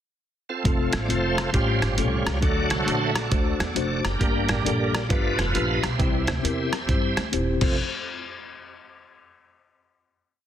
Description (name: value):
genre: uptempo gospel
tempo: 135 BPM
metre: 4/4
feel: swing 64% on 8ths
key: F major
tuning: A4 = 440 Hz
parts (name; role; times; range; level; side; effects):
- bright tonewheel organ; sustained chords; 0.5-7.8 s; E3 to G5; -27 LUFS; right 2 dB; slow rotary speaker, chorus vibrato
- mellow tine electric piano; accompaniment; 0.6-7.8 s; F2 to C5; -28 LUFS; left 2 dB; medium stereo tremolo
- upright bass; bass; 0.7-7.8 s; Eb1 to G2; -28 LUFS; equal; none
- lo-fi sampler-style drum kit; drums; 0.7-7.7 s; crash cymbal, hi-hat, kick drum, rim click; -26 LUFS; equal; overdrive, soft clipping on snare
room: light reverb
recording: dense, heavily limited modern master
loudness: -21 LUFS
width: side -10 dB against mid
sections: 0.0-0.7 pickup bar; 0.7-7.8 breakdown; 7.8-9.6 final hit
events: tonewheel organ solo 0.7-7.8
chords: 0.0 F5; 0.7 F; 1.5 A7alt; 2.4 D; 4.2 Gm; 5.1 G7; 6.0 C; 7.6 F; 7.8 N.C.